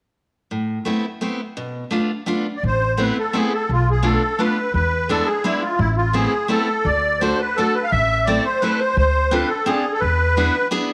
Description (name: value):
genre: musette waltz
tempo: 170 BPM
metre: 3/4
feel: straight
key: A harmonic minor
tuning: A4 = 439 Hz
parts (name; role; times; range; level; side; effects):
- picked steel-string acoustic guitar; accompaniment; 0.5-10.9 s; A2 to A4; -25 LUFS; equal; none
- musette accordion; melody; 2.6-10.7 s; E4 to F5; -22 LUFS; equal; slapback echo
- upright bass; bass; 2.6-10.5 s; A1 to E2; -23 LUFS; equal; none
room: moderate echo chamber reverb, RT60 1.5 s, small room ambience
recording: none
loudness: -20 LUFS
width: mono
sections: 0.5-2.6 A section; 2.6-10.9 B section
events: none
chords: 0.5 Amadd9; 1.6 Bm7b5; 2.6 Amadd9; 3.7 Bm7b5; 4.7 E7; 5.8 Amadd9; 6.9 D; 7.9 Am; 9.0 Dm7; 10.0 E7